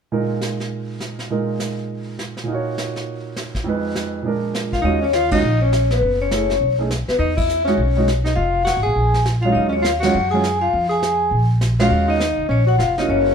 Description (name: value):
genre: jazz, small-group swing and bop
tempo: 204 BPM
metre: 4/4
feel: swing 62% on 8ths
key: Eb minor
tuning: A4 = 440 Hz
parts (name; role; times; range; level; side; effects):
- warm grand piano; accompaniment; 0.1-13.3 s; F2 to Db5; -22 LUFS; right 4 dB; none
- vintage brush drum kit; drums; 0.1-13.3 s; brushed snare drum, hi-hat, kick drum, ride cymbal, snare drum; -28 LUFS; equal; none
- vibraphone with medium hard mallets; melody; 4.7-13.3 s; Cb5 to Ab5; -20 LUFS; left 4 dB; none
- breathy tenor saxophone; second line; 4.7-13.3 s; B3 to Ab4; -24 LUFS; right 2 dB; none
- upright bass; bass; 4.8-13.3 s; F1 to Gb2; -20 LUFS; equal; none
room: moderate studio reverb, RT60 0.7 s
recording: heard from further back in the room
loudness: -17 LUFS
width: side -7 dB against mid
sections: 0.1-4.8 A section; 4.8-13.3 B section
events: band accent 5.3, 7.3, 10.0, 11.8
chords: 0.1 Bb7sus4; 2.5 Ebm9/Bb; 3.7 Fm7b5; 4.2 Bb7; 4.8 Ebm11; 6.0 Gbm7; 6.6 B13; 7.2 Emaj13; 8.4 Fm; 9.0 Bb5; 9.6 Ebm11; 10.7 Fm; 11.3 Bb5; 11.9 Ebm11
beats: | 0.12 0.41 0.71 1.00 | 1.30 1.59 1.89 2.19 | 2.48 2.77 3.07 3.37 | 3.66 3.96 4.25 4.54 | 4.84 5.13 5.43 5.72 | 6.02 6.31 6.61 6.90 | 7.20 7.49 7.79 8.08 | 8.37 8.67 8.96 9.26 | 9.55 9.85 10.14 10.44 | 10.73 11.03 11.32 11.61 | 11.91 12.20 12.50 12.79 | 13.09